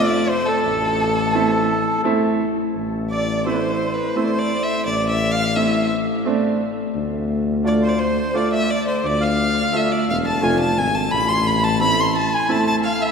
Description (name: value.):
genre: klezmer.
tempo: 86 BPM.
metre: 3/4.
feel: straight.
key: A harmonic minor.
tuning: A4 = 439 Hz.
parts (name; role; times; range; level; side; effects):
rich violin; melody; 0.0-13.1 s; A4 to C6; -22 LUFS; left 1 dB; none.
accordion; second line; 0.0-13.1 s; A4 to C6; -25 LUFS; right 2 dB; none.
clear upright piano; accompaniment; 0.0-12.8 s; A3 to F4; -22 LUFS; right 1 dB; none.
warm tuba; bass; 0.6-12.4 s; E1 to D2; -24 LUFS; left 2 dB; none.
room: wet cathedral reverb, RT60 5.0 s.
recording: recorded in a church or concert hall.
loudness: -17 LUFS.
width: side -6 dB against mid.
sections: 0.0-2.8 A section; 2.8-13.1 B section.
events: violin solo 2.8-13.1.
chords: 0.0 F; 0.7 Am; 7.0 Dm; 11.1 Am.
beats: | 0.65 1.35 2.06 | 2.76 3.46 4.16 | 4.86 5.56 6.26 | 6.96 7.65 8.35 | 9.04 9.73 10.43 | 11.12 11.81 12.50.